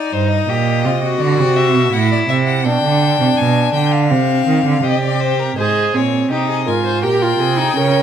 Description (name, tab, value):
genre	classical, baroque-style fugue for string quartet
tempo	83 BPM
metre	4/4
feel	straight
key	C minor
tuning	A4 = 443 Hz
part	clear violin	melody	0.0-8.0 s	Bb4 to Ab5	-20 LUFS	left 9 dB	none
part	rich violin	second line	0.0-8.0 s	C4 to C5	-19 LUFS	left 3 dB	none
part	rich cello	bass	0.1-8.0 s	G2 to Eb3	-17 LUFS	right 6 dB	none
part	warm viola	accompaniment	5.6-8.0 s	C4 to Ab4	-17 LUFS	right 3 dB	none
room	moderate recital hall reverb, RT60 1.7 s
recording	close, detailed microphones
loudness	-13 LUFS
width	side -8 dB against mid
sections	0.0-5.6 A section; 5.6-8.0 B section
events	none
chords	0.0 Cm; 1.2 D7; 2.7 G/B; 4.1 C5; 5.6 Ab; 7.0 Gdim/Bb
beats	0.48 1.20 1.93 | 2.65 3.38 4.11 4.84 | 5.58 6.31 7.03 7.76